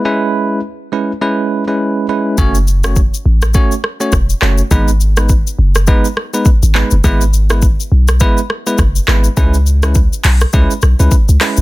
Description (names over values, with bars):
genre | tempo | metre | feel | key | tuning
afrobeats | 103 BPM | 4/4 | swing 58% on 16ths | F# dorian | A4 = 440 Hz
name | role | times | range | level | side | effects
bell-like tine electric piano | accompaniment | 0.0-11.6 s | G#3 to C#5 | -17 LUFS | right 1 dB | auto-pan, low-pass filter, plate reverb
warm 808-style bass | bass | 2.4-11.6 s | E1 to C#2 | -11 LUFS | equal | none
afro-pop drum kit | drums | 2.4-11.6 s | handclaps, hi-hat, kick drum, rim click, shaker | -13 LUFS | equal | none
room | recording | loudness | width
little or no reverb | dense, heavily limited modern master | -10 LUFS | side -19 dB against mid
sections
0.0-2.4 A section; 2.4-11.6 B section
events
filter sweep on tine electric piano 0.0-2.4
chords
0.1 C#m7; 2.4 F#m; 4.7 G#m; 7.0 E/G#; 9.4 C#m7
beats
| 0.05 0.63 1.22 1.80 | 2.38 2.96 3.55 4.13 | 4.71 5.29 5.88 6.46 | 7.04 7.62 8.21 8.79 | 9.37 9.95 10.54 11.12